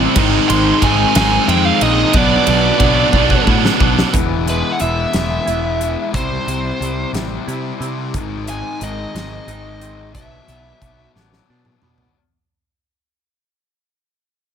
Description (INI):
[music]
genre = quiet-loud alternative rock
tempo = 60 BPM (dotted quarters)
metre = 6/8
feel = straight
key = unclear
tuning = A4 = 440 Hz
[part]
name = string machine, violas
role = sustained chords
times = 0.0-4.1 s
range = D4 to C6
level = -28 LUFS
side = right 1 dB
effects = none
[part]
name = high-gain distorted guitar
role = riff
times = 0.0-4.1 s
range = G#2 to E4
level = -16 LUFS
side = right 14 dB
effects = distortion
[part]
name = thick fuzz guitar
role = riff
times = 0.0-12.2 s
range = G#2 to E4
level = -20 LUFS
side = left 11 dB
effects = distortion
[part]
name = fuzz picked electric bass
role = bass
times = 0.0-12.1 s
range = E1 to C3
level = -21 LUFS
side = right 1 dB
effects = overdrive
[part]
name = big rock drum kit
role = drums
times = 0.2-12.1 s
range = hi-hat, kick drum, ride cymbal, snare drum, toms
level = -20 LUFS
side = right 1 dB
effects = none
[part]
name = biting lead guitar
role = melody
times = 0.5-11.1 s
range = B4 to B#5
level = -20 LUFS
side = right 2 dB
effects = overdrive
[part]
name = twangy electric guitar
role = arpeggios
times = 4.1-12.2 s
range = G#2 to E4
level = -30 LUFS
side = right 10 dB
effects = phaser
[sound]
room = light reverb, studio ambience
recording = none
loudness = -13 LUFS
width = side -8 dB against mid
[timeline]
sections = 0.0-4.1 A section; 4.1-12.2 B section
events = drum fill 3.1-4.1, 11.2-12.2; fade-out 4.1-12.2; lead electric guitar solo 4.1-12.2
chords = 0.2 G#; 2.1 Bm; 4.1 E; 6.1 C; 8.1 G#; 10.1 Bm